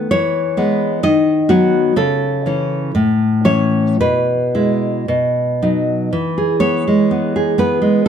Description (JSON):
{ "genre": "romantic piece for solo classical guitar", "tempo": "54-66 BPM", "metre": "2/4", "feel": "rubato", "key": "E major", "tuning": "A4 = 439 Hz", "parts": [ { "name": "nylon-string guitar", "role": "solo", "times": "0.0-8.1 s", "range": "A2 to D#5", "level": "-14 LUFS", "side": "equal", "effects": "none" } ], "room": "light reverb", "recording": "close, detailed microphones", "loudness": "-14 LUFS", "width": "side -8 dB against mid", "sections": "0.0-6.1 A section; 6.1-8.1 B section", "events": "none", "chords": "0.1 E; 1.0 B/D#; 2.0 A/C#; 2.9 A; 4.0 E/B; 5.1 B; 6.1 E" }